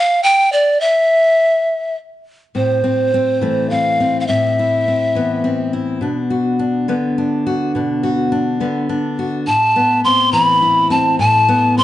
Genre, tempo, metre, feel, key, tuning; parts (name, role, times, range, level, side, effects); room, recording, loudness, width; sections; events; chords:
folk; 69 BPM (dotted quarters); 6/8; straight; A minor; A4 = 440 Hz
breathy hollow pan flute; melody; 0.0-5.7, 9.5-11.8 s; C5 to C6; -13 LUFS; equal
fingerpicked steel-string acoustic guitar; accompaniment; 2.5-11.8 s; A2 to F#4; -17 LUFS; left 2 dB
moderate large studio reverb, RT60 1.1 s; nothing above 10.4 kHz; -13 LUFS; side -13 dB against mid
0.0-2.5 A section; 2.5-9.5 B section; 9.5-11.8 C section
build-up 9.5-11.8
0.0 N.C.; 2.5 Amadd9; 6.0 Bm; 9.5 Amadd9